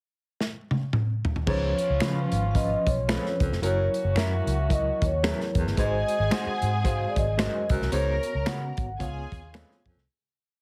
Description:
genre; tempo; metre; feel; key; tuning
uptempo 1960s-style soul; 112 BPM; 4/4; swing 58% on 8ths; unclear; A4 = 441 Hz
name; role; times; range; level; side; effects
natural country drum kit; drums; 0.4-10.0 s; crash cymbal, hi-hat, kick drum, snare drum, toms; -31 LUFS; equal; none
vibraphone with soft mallets; melody; 1.5-9.8 s; C#5 to F#5; -32 LUFS; equal; none
warm horn section; second line; 1.5-9.8 s; E#3 to A#4; -40 LUFS; equal; none
overdriven reed electric piano; accompaniment; 1.5-10.0 s; E#3 to C#5; -36 LUFS; equal; fast tremolo
warm baritone saxophone; riff; 1.5-10.0 s; E2 to G#2; -35 LUFS; equal; none
vintage muted fingered electric bass; bass; 1.5-10.1 s; E#1 to C#3; -30 LUFS; equal; none
electric guitar through a small old amp; stabs; 2.0-9.7 s; F#3 to B#4; -38 LUFS; equal; none
finger snaps; percussion; 2.0-9.7 s; none; -34 LUFS; equal; none
rich symphonic string section; second line; 5.8-9.8 s; G#4 to A#5; -39 LUFS; equal; none
room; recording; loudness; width
little or no reverb; heavily compressed radio sound; -26 LUFS; mono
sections
0.0-1.5 pickup bar; 1.5-10.1 pre-chorus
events
drum fill 0.4-1.5; fade-out 7.9-10.1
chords
0.0 N.C.; 1.5 C#7; 3.6 F#7; 5.8 G#7; 7.9 C#7sus4; 9.0 C#7

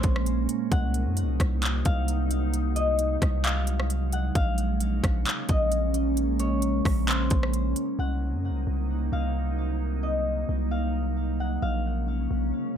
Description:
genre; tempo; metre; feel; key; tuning
hip hop, atmospheric cloud-rap; 132 BPM; 4/4; half-time; unclear; A4 = 440 Hz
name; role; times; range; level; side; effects
concert harp; melody; 0.0-12.8 s; C5 to Gb5; -33 LUFS; left 4 dB; low-pass filter, digital delay
glassy FM pad; sustained chords; 0.0-12.8 s; Bb2 to Eb4; -29 LUFS; right 1 dB; ensemble chorus, built-in reverb, sidechain pumping
long sustained 808-style bass; bass; 0.0-12.5 s; Bb1 to Gb2; -27 LUFS; equal; none
trap drum kit; drums; 0.0-7.9 s; handclaps, hi-hat, kick drum, rim click; -26 LUFS; equal; none
room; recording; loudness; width
little or no reverb; none; -24 LUFS; side -9 dB against mid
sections
0.0-8.0 A section; 8.0-12.8 B section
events
none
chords
0.0 Bbm9; 0.7 Cm7b5; 4.4 Bbm9; 8.0 Cm7b5; 11.6 Bbm7

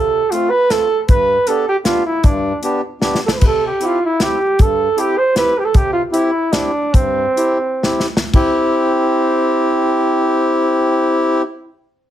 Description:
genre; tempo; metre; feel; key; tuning
alpine folk, alpine dance band; 115-158 BPM; 3/4; rubato; C major; A4 = 440 Hz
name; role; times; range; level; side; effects
mellow flugelhorn; melody; 0.0-11.4 s; C4 to C5; -16 LUFS; right 2 dB; plate reverb
accordion; accompaniment; 0.0-11.4 s; G2 to G4; -18 LUFS; left 1 dB; none
natural country drum kit; drums; 0.3-8.5 s; crash cymbal, hi-hat, kick drum, snare drum; -15 LUFS; equal; none
room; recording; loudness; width
moderate studio reverb, RT60 0.6 s; heavily compressed radio sound, multiband compression; -13 LUFS; side -11 dB against mid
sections
0.0-8.3 A section; 8.3-11.4 B section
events
drum fill 3.0-3.4, 7.8-8.3; slowing down 5.7-8.3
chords
0.0 F; 1.1 G; 3.4 C

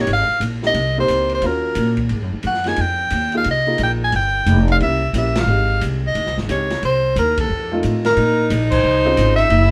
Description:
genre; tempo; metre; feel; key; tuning
jazz, small-group swing and bop; 178 BPM; 4/4; swing 64% on 8ths; F minor; A4 = 440 Hz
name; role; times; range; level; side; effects
bright soprano saxophone; melody; 0.0-9.7 s; A4 to Ab5; -21 LUFS; equal; none
warm upright piano; accompaniment; 0.0-9.5 s; Ab3 to Ab4; -27 LUFS; equal; none
upright bass; bass; 0.0-9.7 s; F1 to Bb2; -22 LUFS; equal; none
open jazz drum kit; drums; 0.1-9.6 s; crash cymbal, hi-hat, kick drum, ride cymbal, snare drum; -31 LUFS; equal; none
clear tenor saxophone; second line; 8.2-9.7 s; Eb4 to Fb4; -23 LUFS; equal; none
room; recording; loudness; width
moderate studio reverb, RT60 0.5 s; band playing live in one room; -18 LUFS; mono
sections
0.0-8.2 A section; 8.2-9.7 B section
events
band accent 5.3, 7.3, 8.7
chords
0.1 Abmaj9; 1.4 Ebm7; 2.1 Absus2; 2.8 Bb13sus4; 4.1 Fsus2; 4.8 C7b9; 5.5 Fm9; 6.8 Cm7; 7.5 F7; 8.2 Bbm11

